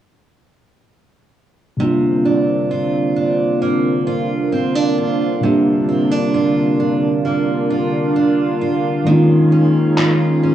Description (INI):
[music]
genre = contemporary R&B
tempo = 66 BPM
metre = 4/4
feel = straight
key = C minor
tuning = A4 = 440 Hz
[part]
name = mellow tine electric piano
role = accompaniment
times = 1.8-10.5 s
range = C3 to G4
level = -17 LUFS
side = left 1 dB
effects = medium stereo tremolo
[part]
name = lush unison pad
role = sustained chords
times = 1.8-10.5 s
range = D3 to F4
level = -20 LUFS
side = right 1 dB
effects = chorus
[part]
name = picked steel-string acoustic guitar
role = arpeggios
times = 1.8-10.5 s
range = C3 to F4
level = -19 LUFS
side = right 4 dB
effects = analog delay
[part]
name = electronic handclaps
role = drums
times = 10.0-10.2 s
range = none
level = -23 LUFS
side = equal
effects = overdrive, cassette tape
[sound]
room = light reverb, digital ambience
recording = home recording on cassette, small room ambience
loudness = -14 LUFS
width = side -11 dB against mid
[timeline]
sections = 1.8-10.5 A section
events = none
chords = 1.8 C9sus4; 9.1 Eb9sus4